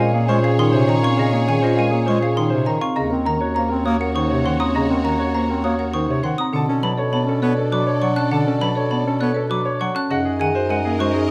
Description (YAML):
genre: classical, minimalist pattern music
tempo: 101 BPM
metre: 3/4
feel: straight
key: unclear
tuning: A4 = 440 Hz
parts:
  - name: warm grand piano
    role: melody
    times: 0.0-11.3 s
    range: Ab4 to Bb5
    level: -28 LUFS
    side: equal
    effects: none
  - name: dark French horn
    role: second line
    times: 0.0-11.3 s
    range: Db4 to Eb4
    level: -29 LUFS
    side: equal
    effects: none
  - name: warm bass clarinet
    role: accompaniment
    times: 0.0-11.1 s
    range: C3 to Db4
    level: -27 LUFS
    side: equal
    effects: none
  - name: rich studio string section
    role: sustained chords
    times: 0.0-11.3 s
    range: Gb4 to Eb5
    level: -33 LUFS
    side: equal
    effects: none
  - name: marimba with medium hard mallets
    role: arpeggios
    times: 0.0-11.3 s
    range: C4 to Db5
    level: -27 LUFS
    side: equal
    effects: none
  - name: xylophone with rubber mallets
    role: arpeggios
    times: 0.0-11.2 s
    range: Eb5 to F#6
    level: -29 LUFS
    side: equal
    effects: none
  - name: warm bass clarinet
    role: bass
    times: 0.0-11.3 s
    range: Eb2 to B2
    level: -25 LUFS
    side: equal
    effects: none
room: light reverb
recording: close, detailed microphones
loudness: -19 LUFS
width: mono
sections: 0.0-11.3 A section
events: none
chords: 0.0 Bbm9; 3.0 Ebm7; 6.5 Bm7; 10.1 Gb69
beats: 0.59 | 1.18 1.78 2.37 | 2.96 3.56 4.15 | 4.75 5.34 5.93 | 6.53 7.12 7.72 | 8.31 8.90 9.50 | 10.09 10.69 11.28